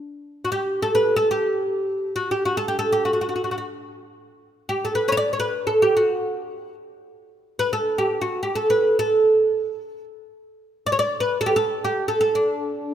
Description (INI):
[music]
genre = Arabic maqam ensemble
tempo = free time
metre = none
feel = none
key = unclear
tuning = A4 = 435 Hz
[part]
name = oud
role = solo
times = 0.4-12.9 s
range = D4 to D5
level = -20 LUFS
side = right 1 dB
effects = none
[sound]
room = light reverb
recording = minimal, uncompressed stereo recording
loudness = -20 LUFS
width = side -10 dB against mid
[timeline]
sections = 0.1-12.9 A section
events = none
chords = none